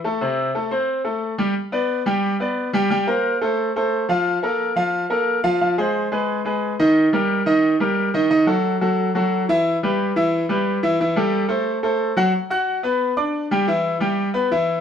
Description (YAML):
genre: latin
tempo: 178 BPM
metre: 4/4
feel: straight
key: unclear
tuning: A4 = 444 Hz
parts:
  - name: bright concert grand piano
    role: solo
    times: 0.0-14.8 s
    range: C3 to F#6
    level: -18 LUFS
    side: equal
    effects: none
room: moderate studio reverb, RT60 0.8 s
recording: band playing live in one room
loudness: -18 LUFS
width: side -8 dB against mid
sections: 0.0-1.6 A section; 1.6-12.3 B section; 12.3-14.8 C section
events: none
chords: 0.2 Am7/C; 1.6 G; 2.9 C5; 3.6 F; 4.3 Bb5; 5.6 Fm; 6.3 Abm; 7.0 Eb; 8.3 D#dim; 9.6 Em; 11.0 Am7; 11.7 F#dim; 12.3 Gmaj7; 13.7 Em